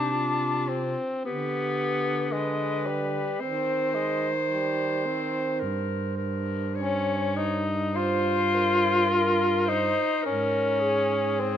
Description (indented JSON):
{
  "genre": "classical, lyrical piece for single-reed quartet",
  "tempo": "51-56 BPM",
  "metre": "4/4",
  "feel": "rubato",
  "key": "unclear",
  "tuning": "A4 = 440 Hz",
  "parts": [
    { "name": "bright clarinet", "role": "melody", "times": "0.0-11.6 s", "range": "Eb4 to Db5", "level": "-32 LUFS", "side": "left 6 dB", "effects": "none" },
    { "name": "mellow alto saxophone", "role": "second line", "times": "0.0-11.6 s", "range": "G4 to C5", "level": "-33 LUFS", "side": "right 11 dB", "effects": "none" },
    { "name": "warm tenor saxophone", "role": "accompaniment", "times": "0.0-11.6 s", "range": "G3 to F4", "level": "-26 LUFS", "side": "left 2 dB", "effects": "none" },
    { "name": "mellow baritone saxophone", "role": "bass", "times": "0.0-11.6 s", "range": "G2 to Eb3", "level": "-31 LUFS", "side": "right 2 dB", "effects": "none" }
  ],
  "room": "moderate recital hall reverb, RT60 1.4 s",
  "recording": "close, detailed microphones",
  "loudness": "-24 LUFS",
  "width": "side -9 dB against mid",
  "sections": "0.0-11.6 A section",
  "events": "none",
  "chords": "0.0 C5; 1.3 G/D; 3.4 Cm/Eb; 5.6 Eb13/G; 10.3 Ab"
}